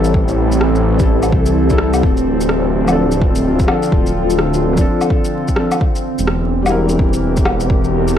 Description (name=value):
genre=future garage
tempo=127 BPM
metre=4/4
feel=swing 62% on 16ths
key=unclear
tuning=A4 = 438 Hz
part: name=felt-muted upright piano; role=accompaniment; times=0.0-7.5 s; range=F3 to Bb4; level=-20 LUFS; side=left 2 dB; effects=vintage 12-bit sampler grit, sidechain pumping, tape echo
part: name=warbly tape-like pad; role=sustained chords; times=0.0-8.2 s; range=D3 to Bb4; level=-18 LUFS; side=equal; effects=chorus, built-in reverb, phaser, vintage 12-bit sampler grit, sidechain pumping
part: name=swelling detuned saw bass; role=bass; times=0.0-8.2 s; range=D1 to C2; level=-17 LUFS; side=equal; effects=tube saturation, sidechain pumping
part: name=electronic shaker, rim click and woodblock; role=drums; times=0.0-8.2 s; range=none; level=-21 LUFS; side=left 1 dB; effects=overdrive, small room ambience
part: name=electronic kick drum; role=drums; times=0.1-7.8 s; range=none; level=-16 LUFS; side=equal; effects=overdrive, small room ambience
room=light reverb, digital ambience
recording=vinyl crackle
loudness=-12 LUFS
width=side -9 dB against mid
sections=0.0-8.2 A section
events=none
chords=0.0 Am7; 2.0 Dm7; 5.8 C7/E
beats=| 0.14 0.61 1.08 1.56 | 2.03 2.50 2.97 3.45 | 3.92 4.39 4.86 5.34 | 5.81 6.28 6.75 7.23 | 7.70 8.17